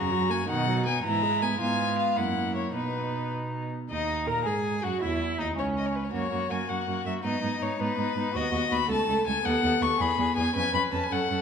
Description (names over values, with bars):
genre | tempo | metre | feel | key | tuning
quick classical-period movement for string quartet | 108 BPM (dotted quarters) | 6/8 | straight | B major | A4 = 440 Hz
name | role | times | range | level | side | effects
warm violin | melody | 0.0-11.4 s | B4 to C#6 | -29 LUFS | left 5 dB | none
dark violin | second line | 0.0-11.4 s | C#4 to B4 | -32 LUFS | left 1 dB | none
warm viola | accompaniment | 0.0-11.4 s | C#3 to A#4 | -32 LUFS | right 2 dB | none
dark cello | bass | 0.0-11.4 s | C#2 to B2 | -32 LUFS | right 4 dB | none
room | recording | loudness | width
wet recital hall reverb, RT60 1.7 s | minimal, uncompressed stereo recording | -25 LUFS | side -7 dB against mid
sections
0.0-3.9 A section; 3.9-11.4 B section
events
none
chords
0.5 B; 1.0 E/G#; 1.6 G#m6; 2.2 F#7; 2.7 B; 3.9 D#madd11; 5.0 C#m; 6.1 F#; 7.2 G#m; 8.3 B; 8.9 A; 9.4 B7; 10.0 E; 10.6 C#7